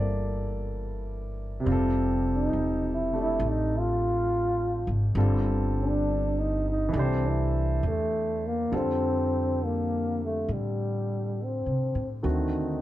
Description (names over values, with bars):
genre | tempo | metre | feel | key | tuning
jazz ballad | 68 BPM | 4/4 | swing 68% on 8ths | F major | A4 = 440 Hz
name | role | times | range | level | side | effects
trombone with bucket mute | melody | 0.0-12.8 s | G3 to F4 | -28 LUFS | equal | none
warm baby grand piano | accompaniment | 0.0-12.8 s | C3 to D5 | -31 LUFS | equal | none
upright bass | bass | 0.0-12.8 s | E1 to C3 | -29 LUFS | equal | none
room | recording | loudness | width
moderate club reverb, RT60 0.6 s | heard from further back in the room | -25 LUFS | side -14 dB against mid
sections
0.0-8.7 A section; 8.7-12.8 B section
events
trombone solo 0.0-8.7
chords
0.0 C13; 1.7 Fmaj9; 5.2 G5; 6.9 Cadd9; 8.7 Fadd9; 12.2 D7b9